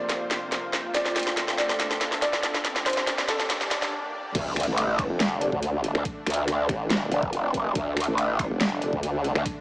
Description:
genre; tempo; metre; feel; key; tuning
heavy wobble dubstep; 141 BPM; 4/4; half-time; D minor; A4 = 440 Hz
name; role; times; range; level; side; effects
warm grand piano; melody; 0.0-3.9 s; A4 to D5; -30 LUFS; equal; dub echo
supersaw pad; sustained chords; 0.0-9.6 s; D2 to D5; -34 LUFS; equal; sidechain pumping
riser, swell and impact; sound effects; 0.7-6.1 s; none; -39 LUFS; equal; none
deep dark ambient pad; texture; 0.0-3.9 s; D4 to G5; -36 LUFS; equal; chorus, built-in reverb, sidechain pumping
dubstep drum kit; drums; 0.1-9.5 s; crash cymbal, finger snaps, hi-hat, snare drum; -27 LUFS; equal; high-pass filter on snare, studio reverb, high-pass filter on hats, high-pass filter on cymbals
growl bass; bass; 4.3-9.4 s; F1 to D2; -24 LUFS; equal; chorus, overdrive
electronic kick drum; drums; 4.3-9.5 s; none; -34 LUFS; equal; studio reverb
formant-sweep wobble bass; bass; 5.1-9.3 s; F1 to D2; -27 LUFS; equal; chorus, overdrive
dark brass ensemble; stabs; 5.4-8.9 s; D4 to D5; -31 LUFS; equal; dub echo
room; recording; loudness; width
moderate plate reverb, RT60 1.2 s; high-pass filter, small speaker sound; -23 LUFS; side -23 dB against mid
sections
0.0-4.3 A section; 4.3-9.6 B section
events
build-up 0.0-4.3; drum fill 0.0-3.9; swell 3.5-4.3; break 3.9-4.3; drop 4.3-9.6; impact 4.3-6.1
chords
0.0 Fsus4; 0.9 Dm; 2.6 Gm; 4.3 D5

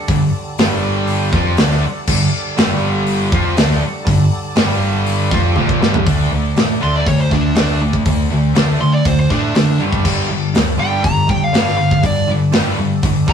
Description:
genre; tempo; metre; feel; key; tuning
hard rock; 120 BPM; 4/4; straight; G minor; A4 = 440 Hz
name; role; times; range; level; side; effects
overdriven tonewheel organ; sustained chords; 0.0-13.3 s; G3 to D5; -30 LUFS; right 1 dB; chorus vibrato, slow rotary speaker
distorted electric guitar; riff; 0.1-13.3 s; G2 to F4; -22 LUFS; right 5 dB; overdrive
scooped high-gain guitar; riff; 0.1-13.3 s; G2 to F4; -20 LUFS; left 2 dB; distortion
hollow-body short-scale picked electric bass; bass; 0.1-13.3 s; G1 to D3; -19 LUFS; left 1 dB; none
tight metal drum kit; drums; 0.1-13.3 s; crash cymbal, hi-hat, kick drum, snare drum, toms; -17 LUFS; equal; none
high-gain lead guitar; melody; 6.8-13.3 s; D4 to C6; -20 LUFS; right 1 dB; distortion
room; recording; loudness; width
moderate stone room reverb, RT60 1.2 s; rough rehearsal-room recording; -13 LUFS; side -7 dB against mid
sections
0.0-6.1 A section; 6.1-13.3 B section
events
drum fill 5.6-6.1; lead electric guitar solo 6.1-13.3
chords
0.0 Gm; 6.1 D5; 9.8 G5

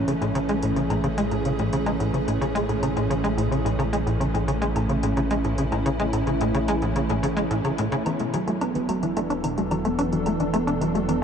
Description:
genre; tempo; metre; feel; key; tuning
ambient, sequencer-driven space music; 109 BPM; 4/4; straight; unclear; A4 = 441 Hz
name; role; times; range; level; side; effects
evolving wavetable pad; sustained chords; 0.0-11.2 s; E3 to A4; -26 LUFS; right 1 dB; ensemble chorus, built-in reverb
tight sequencer bass; riff; 0.0-11.2 s; A2 to D4; -25 LUFS; left 1 dB; lush chorus, ping-pong delay
fat analog bass; bass; 0.0-11.2 s; E1 to A1; -31 LUFS; equal; none
electronic hi-hat and woodblock; percussion; 0.1-11.2 s; none; -39 LUFS; left 1 dB; ping-pong delay
thumb-piano-like synth pluck; arpeggios; 8.1-11.2 s; B2 to E4; -27 LUFS; right 2 dB; chorus, auto-pan, ping-pong delay
room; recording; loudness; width
wet huge ambient reverb, RT60 7.3 s; dark, warm production; -22 LUFS; side -7 dB against mid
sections
0.0-8.1 A section; 8.1-11.2 B section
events
filter sweep on analog synth bass 0.0-8.1, 8.1-11.2; filter sweep on synth arpeggio sound 8.1-11.2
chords
0.0 Amaj7; 8.1 E7sus4

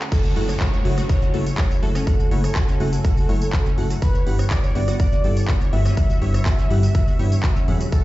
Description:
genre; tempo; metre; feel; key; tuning
progressive house; 123 BPM; 4/4; straight; F# minor; A4 = 436 Hz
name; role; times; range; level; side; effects
warm analog pad; sustained chords; 0.0-8.0 s; C#3 to G#5; -31 LUFS; equal; chorus, sidechain pumping
big-room dance drum kit; drums; 0.0-8.0 s; crash cymbal, handclaps, hi-hat, rim click, tambourine; -32 LUFS; equal; studio reverb, sidechain pumping on hats, sidechain pumping on perc, sidechain pumping on cymbals
plucky unison lead; melody; 0.1-8.0 s; A4 to E5; -30 LUFS; equal; lush chorus, cassette tape, tape echo
wide unison pluck; arpeggios; 0.1-8.0 s; F#3 to F#6; -33 LUFS; right 2 dB; sidechain pumping, tape echo
electronic kick drum; drums; 0.1-8.0 s; none; -19 LUFS; equal; studio reverb
downlifter; sound effects; 0.1-4.0 s; none; -33 LUFS; equal; none
deep mellow chord stab; stabs; 0.4-8.0 s; G2 to G#4; -27 LUFS; left 1 dB; chorus, sidechain pumping, tape echo
dark detuned saw bass; bass; 0.4-7.8 s; E1 to G2; -21 LUFS; equal; tube saturation, sidechain pumping
room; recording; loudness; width
digital ambience; played on a big sound system in a bare room, large studio reverb, nothing above 7.7 kHz; -17 LUFS; side -17 dB against mid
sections
0.1-8.0 A section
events
drop 0.1-8.0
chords
0.1 F#m7; 4.0 G6

